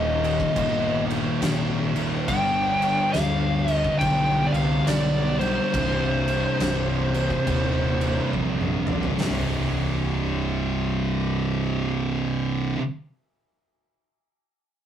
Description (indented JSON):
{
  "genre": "stoner and doom metal",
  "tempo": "69 BPM",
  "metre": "4/4",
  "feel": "swing 62% on 8ths",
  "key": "C minor",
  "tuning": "A4 = 440 Hz",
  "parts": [
    { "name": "fuzz lead guitar", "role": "melody", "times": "0.0-8.3 s", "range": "C5 to G5", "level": "-25 LUFS", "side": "equal", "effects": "distortion" },
    { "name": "crunchy overdriven guitar", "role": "riff", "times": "0.0-12.8 s", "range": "C2 to G3", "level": "-33 LUFS", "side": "equal", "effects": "none" },
    { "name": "thick fuzz guitar", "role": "riff", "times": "0.0-12.8 s", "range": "C2 to G3", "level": "-27 LUFS", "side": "left 4 dB", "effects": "distortion" },
    { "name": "thick fuzz guitar", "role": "riff", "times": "0.0-12.8 s", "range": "C2 to G3", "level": "-28 LUFS", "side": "right 4 dB", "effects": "distortion" },
    { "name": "fuzz fingered electric bass", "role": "bass", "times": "0.0-12.7 s", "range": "C1 to D2", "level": "-29 LUFS", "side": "left 1 dB", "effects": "overdrive" },
    { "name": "oversized low-tuned drum kit", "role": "drums", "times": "0.2-9.5 s", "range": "crash cymbal, hi-hat, kick drum, snare drum, toms", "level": "-30 LUFS", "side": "equal", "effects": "none" }
  ],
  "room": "light reverb",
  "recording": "rough rehearsal-room recording, warm saturation",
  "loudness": "-21 LUFS",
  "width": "side -10 dB against mid",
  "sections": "0.0-9.2 A section; 9.2-12.7 B section",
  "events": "drum fill 8.3-9.2",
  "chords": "0.0 Eb; 2.3 G; 5.7 Cm; 9.2 C5"
}